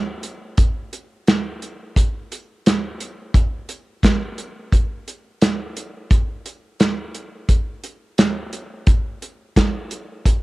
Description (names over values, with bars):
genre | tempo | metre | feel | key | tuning
rock | 87 BPM | 4/4 | straight | none | none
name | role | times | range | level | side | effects
natural country drum kit | drums | 0.2-10.4 s | hi-hat, kick drum, snare drum | -16 LUFS | equal | cassette tape
room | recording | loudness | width
light reverb | home recording on cassette | -18 LUFS | side -20 dB against mid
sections
0.0-10.4 A section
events
none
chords
none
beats
| 0.58 1.27 1.96 2.65 | 3.34 4.03 4.72 5.41 | 6.11 6.80 7.49 8.18 | 8.87 9.56 10.25